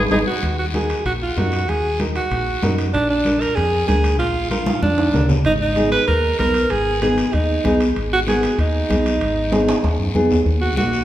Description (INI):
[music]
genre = latin, cumbia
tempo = 191 BPM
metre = 4/4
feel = straight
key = unclear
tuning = A4 = 440 Hz
[part]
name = nylon-string guitar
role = accompaniment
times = 0.0-11.0 s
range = Bb3 to Cb5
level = -23 LUFS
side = equal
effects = none
[part]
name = fingered electric bass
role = bass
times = 0.0-11.0 s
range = Ab1 to Gb2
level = -22 LUFS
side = equal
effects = none
[part]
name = edgy alto saxophone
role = melody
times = 0.1-11.0 s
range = D4 to Cb5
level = -20 LUFS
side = right 2 dB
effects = none
[part]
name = congas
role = percussion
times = 0.1-10.9 s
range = none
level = -26 LUFS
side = left 1 dB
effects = none
[part]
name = guiro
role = percussion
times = 0.1-11.0 s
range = none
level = -33 LUFS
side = left 5 dB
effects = none
[part]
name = timbales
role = percussion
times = 0.1-10.4 s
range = none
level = -29 LUFS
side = right 2 dB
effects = none
[sound]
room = wet recital hall reverb, RT60 1.9 s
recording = recorded in a church or concert hall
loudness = -16 LUFS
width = side -13 dB against mid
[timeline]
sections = 0.4-10.5 A section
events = drum fill 0.0-0.4, 4.7-5.5, 9.5-10.5; band accent 0.0-0.4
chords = 0.4 Ebm; 2.9 Bb7; 5.5 Abm; 10.5 Ebm